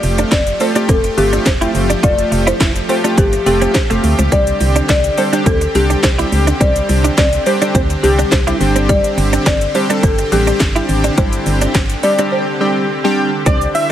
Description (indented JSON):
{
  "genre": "dance-pop",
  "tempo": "105 BPM",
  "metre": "4/4",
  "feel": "straight",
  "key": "unclear",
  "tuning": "A4 = 444 Hz",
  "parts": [
    { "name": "folk marimba with soft mallets", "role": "melody", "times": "0.0-13.1 s", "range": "G4 to D5", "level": "-18 LUFS", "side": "left 1 dB", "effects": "digital delay" },
    { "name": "chorused retro synth keys", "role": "accompaniment", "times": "0.0-13.7 s", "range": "G3 to A4", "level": "-18 LUFS", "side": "equal", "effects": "sidechain pumping" },
    { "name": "supersaw pad", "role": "sustained chords", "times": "0.0-13.9 s", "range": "D3 to G4", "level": "-22 LUFS", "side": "equal", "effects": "sidechain pumping" },
    { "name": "direct-recorded clean electric guitar", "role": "riff", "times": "0.0-13.8 s", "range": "G3 to F4", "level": "-21 LUFS", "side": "right 3 dB", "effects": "ensemble chorus" },
    { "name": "organ-like FM bass", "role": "bass", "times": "0.0-13.7 s", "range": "F1 to D2", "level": "-17 LUFS", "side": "equal", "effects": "sidechain pumping" },
    { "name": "house drum kit", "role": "drums", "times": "0.0-13.9 s", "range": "handclaps, hi-hat, kick drum, shaker, snare drum", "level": "-17 LUFS", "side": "equal", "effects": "none" },
    { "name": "wide unison lead", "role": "melody", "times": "13.5-13.9 s", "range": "D5 to E5", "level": "-16 LUFS", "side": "right 1 dB", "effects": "none" }
  ],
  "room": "little or no reverb",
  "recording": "heavily compressed radio sound",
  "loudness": "-12 LUFS",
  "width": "side -11 dB against mid",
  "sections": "0.0-13.5 A section",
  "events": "drums muted 12.3-13.5",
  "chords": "0.0 Fadd9; 4.3 Csus2; 8.6 Gsus4",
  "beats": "0.32 0.89 1.46 | 2.04 2.61 3.18 3.75 | 4.32 4.89 5.46 6.04 | 6.61 7.18 7.75 8.32 | 8.89 9.46 10.04 10.61 | 11.18 11.75 12.32 12.89 | 13.46"
}